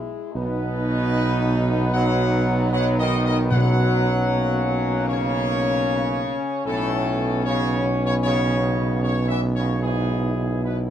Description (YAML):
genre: classical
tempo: 76 BPM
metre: 4/4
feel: straight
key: B major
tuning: A4 = 440 Hz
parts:
  - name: mellow French horn section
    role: sustained chords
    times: 0.0-10.9 s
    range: G#3 to E4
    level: -27 LUFS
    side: left 3 dB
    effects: none
  - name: mellow tuba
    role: bass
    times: 0.0-10.9 s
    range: B1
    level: -22 LUFS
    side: right 2 dB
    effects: none
  - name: dark trumpet section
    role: melody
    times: 0.3-10.8 s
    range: G#4 to F#5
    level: -29 LUFS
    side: left 1 dB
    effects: none
  - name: dark trombone section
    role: sustained chords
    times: 0.3-10.9 s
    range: G#2 to F#3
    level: -27 LUFS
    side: equal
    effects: none
  - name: timpani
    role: percussion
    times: 3.5-4.6 s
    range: B2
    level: -23 LUFS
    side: equal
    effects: none
room: moderate studio reverb, RT60 0.7 s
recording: none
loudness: -19 LUFS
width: side -10 dB against mid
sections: 0.0-10.9 A section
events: none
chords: 0.4 B; 3.5 F#/B; 6.7 Aadd9/B; 9.8 E/B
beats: | 0.35 1.14 1.95 2.73 | 3.52 4.30 5.08 5.87 | 6.66 7.45 8.24 9.03 | 9.83 10.64